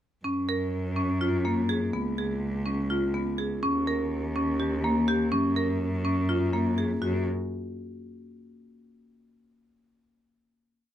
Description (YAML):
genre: contemporary instrumental, chamber music in an uneven meter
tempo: 248 BPM (eighths)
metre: 7/8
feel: straight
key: F# major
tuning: A4 = 440 Hz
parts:
  - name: marimba with medium hard mallets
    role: arpeggios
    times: 0.2-7.2 s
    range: A#3 to A#4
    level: -27 LUFS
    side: equal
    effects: none
  - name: rich cello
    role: bass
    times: 0.2-7.2 s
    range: C#2 to F#2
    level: -31 LUFS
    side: equal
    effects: none
room: moderate studio reverb, RT60 0.5 s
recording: minimal, uncompressed stereo recording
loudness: -25 LUFS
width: side -11 dB against mid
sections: 0.2-7.0 A section; 7.0-8.7 final note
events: none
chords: 0.2 F#; 1.9 C#7(no3); 3.6 D#7; 5.3 F#; 7.0 N.C.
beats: | 0.25 0.49 0.73 0.97 1.21 1.46 1.70 | 1.94 2.18 2.42 2.66 2.90 3.15 3.39 | 3.63 3.87 4.12 4.36 4.60 4.84 5.08 | 5.32 5.57 5.81 6.05 6.29 6.53 6.78 | 7.02